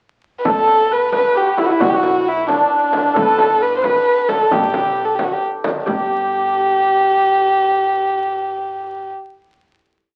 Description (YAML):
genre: Persian modal ensemble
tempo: 89 BPM (dotted quarters)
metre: 6/8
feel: straight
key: G dastgah mahur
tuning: A4 = 437 Hz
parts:
  - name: dark kamancheh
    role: melody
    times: 0.4-9.1 s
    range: D4 to C5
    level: -18 LUFS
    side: equal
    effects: none
  - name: santur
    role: second line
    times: 0.4-9.1 s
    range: D4 to B4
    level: -24 LUFS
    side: equal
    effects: none
  - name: upright bass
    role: bass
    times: 0.5-9.1 s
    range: G1 to B1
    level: -41 LUFS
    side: equal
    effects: none
  - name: frame drum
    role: percussion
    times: 0.5-6.1 s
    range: none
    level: -27 LUFS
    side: equal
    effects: none
  - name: tombak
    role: percussion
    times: 0.5-6.1 s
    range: none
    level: -28 LUFS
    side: equal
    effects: none
room: light reverb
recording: very old 78 rpm record, vinyl crackle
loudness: -16 LUFS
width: mono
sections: 0.0-0.5 pickup bar; 0.5-5.9 A section; 5.9-8.6 final note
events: none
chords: none